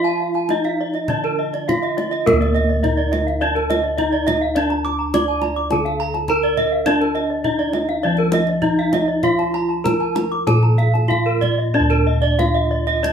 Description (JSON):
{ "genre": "Balinese gamelan", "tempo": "93-104 BPM", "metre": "4/4", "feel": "straight", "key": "D pelog", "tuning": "A4 = 438 Hz", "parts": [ { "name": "gamelan-type bronze metallophone", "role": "melody", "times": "0.0-13.1 s", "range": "Bb3-20c to D5", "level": "-22 LUFS", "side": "right 1 dB", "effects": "none" }, { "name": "gamelan-type bronze metallophone", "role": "arpeggios", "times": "0.0-13.1 s", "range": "Bb4-20c to D6", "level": "-24 LUFS", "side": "left 3 dB", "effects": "none" }, { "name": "gamelan-type bronze metallophone", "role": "arpeggios", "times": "0.0-13.0 s", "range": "Bb4-20c to D6", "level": "-23 LUFS", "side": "right 5 dB", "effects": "none" }, { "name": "gamelan-type bossed gongs", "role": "bass", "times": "0.0-13.1 s", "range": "D2 to Bb4-20c", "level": "-21 LUFS", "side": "equal", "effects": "none" }, { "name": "kendang", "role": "percussion", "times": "0.1-13.1 s", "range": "none", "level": "-26 LUFS", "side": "left 1 dB", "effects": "none" } ], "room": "moderate studio reverb, RT60 0.5 s", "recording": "band playing live in one room", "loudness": "-16 LUFS", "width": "side -7 dB against mid", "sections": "0.0-2.3 A section; 2.3-11.7 B section; 11.7-13.1 A section", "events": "none", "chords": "none", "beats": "0.49 1.09 1.68 | 2.26 2.83 3.41 3.99 | 4.56 5.14 5.71 6.29 | 6.87 7.45 8.03 8.63 | 9.23 9.85 10.47 11.10 | 11.74 12.39 13.03" }